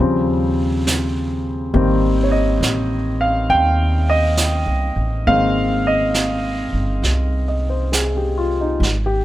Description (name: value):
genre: jazz ballad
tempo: 68 BPM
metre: 4/4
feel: swing 66% on 8ths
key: Ab major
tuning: A4 = 441 Hz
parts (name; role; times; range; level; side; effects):
- warm grand piano; accompaniment; 0.0-9.2 s; Db3 to G5; -18 LUFS; equal; none
- upright bass; bass; 0.0-9.2 s; G1 to Eb2; -20 LUFS; equal; none
- jazz brush drum kit; drums; 0.0-9.2 s; brushed snare drum, hi-hat, snare drum; -24 LUFS; right 3 dB; none
room: little or no reverb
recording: close, detailed microphones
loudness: -16 LUFS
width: side -14 dB against mid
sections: 0.0-8.8 A section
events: none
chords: 0.0 Eb13; 1.7 Abmaj7